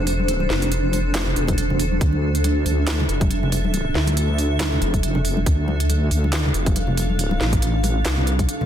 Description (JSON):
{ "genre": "deep dubstep", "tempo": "139 BPM", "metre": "4/4", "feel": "swing 56% on 16ths, half-time", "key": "D minor", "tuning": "A4 = 438 Hz", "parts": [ { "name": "granular cloud pad", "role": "sustained chords", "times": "0.0-8.7 s", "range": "D4 to F5", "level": "-25 LUFS", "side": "right 1 dB", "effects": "built-in reverb" }, { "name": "deep soft wobble bass", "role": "bass", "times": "0.0-8.5 s", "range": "E1 to D2", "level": "-21 LUFS", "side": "equal", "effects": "chorus" }, { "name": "garage drum kit", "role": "drums", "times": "0.1-8.6 s", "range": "handclaps, hi-hat, snare drum", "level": "-26 LUFS", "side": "right 1 dB", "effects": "soft clipping on snare" }, { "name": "congas", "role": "percussion", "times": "0.1-8.7 s", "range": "none", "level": "-28 LUFS", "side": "left 2 dB", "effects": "none" }, { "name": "electronic kick drum", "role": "drums", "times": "1.5-8.5 s", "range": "none", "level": "-23 LUFS", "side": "equal", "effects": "none" } ], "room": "light reverb", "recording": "dense, heavily limited modern master", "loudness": "-18 LUFS", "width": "side -10 dB against mid", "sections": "0.0-8.7 A section", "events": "break 8.5", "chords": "0.0 Dm" }